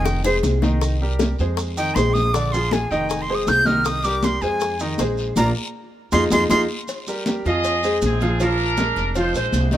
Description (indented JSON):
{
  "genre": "latin, salsa",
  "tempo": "158 BPM",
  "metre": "4/4",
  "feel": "straight",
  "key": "unclear",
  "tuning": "A4 = 438 Hz",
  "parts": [
    { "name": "breathy bright jazz flute", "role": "melody", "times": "0.0-6.6 s", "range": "C5 to G6", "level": "-22 LUFS", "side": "equal", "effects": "none" },
    { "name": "bright grand piano", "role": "accompaniment", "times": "0.0-9.8 s", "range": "D3 to F5", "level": "-24 LUFS", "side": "equal", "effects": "none" },
    { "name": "upright bass", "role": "bass", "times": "0.0-9.8 s", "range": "F1 to F2", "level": "-23 LUFS", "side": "equal", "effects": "none" },
    { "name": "bongos and cowbell", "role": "percussion", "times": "0.1-9.8 s", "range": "none", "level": "-27 LUFS", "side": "left 6 dB", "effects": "none" },
    { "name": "congas", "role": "percussion", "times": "0.1-9.8 s", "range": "none", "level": "-26 LUFS", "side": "equal", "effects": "none" },
    { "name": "guiro", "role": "percussion", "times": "0.1-9.8 s", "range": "none", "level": "-36 LUFS", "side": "left 4 dB", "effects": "none" },
    { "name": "maracas", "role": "percussion", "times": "0.1-9.8 s", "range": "none", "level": "-35 LUFS", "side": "right 3 dB", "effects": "none" },
    { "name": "bright trumpet section", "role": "melody", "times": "7.5-9.7 s", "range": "C4 to Eb5", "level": "-23 LUFS", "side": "right 2 dB", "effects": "none" }
  ],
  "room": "light reverb",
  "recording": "minimal, uncompressed stereo recording",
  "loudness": "-18 LUFS",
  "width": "side -12 dB against mid",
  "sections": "0.0-6.9 A section; 6.9-9.8 B section",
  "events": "flute solo 0.0-6.9; drum fill 0.1-0.8, 6.1-6.9; band accent 5.4-6.9",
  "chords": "0.1 Fm7; 0.8 Cm7; 1.6 Fm7; 2.3 Bb7; 3.1 Fm7; 3.9 Cm7; 4.6 Fm7; 5.4 Bb; 6.1 Fm7; 6.9 Fm11; 7.6 Fm7; 8.4 Bb7; 9.2 Fm7",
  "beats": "0.06 0.44 | 0.82 1.20 1.58 1.96 | 2.33 2.71 3.09 3.47 | 3.85 4.23 4.61 4.99 | 5.37 5.75 6.13 6.50 | 6.88 7.26 7.64 8.02 | 8.40 8.78 9.15 9.53"
}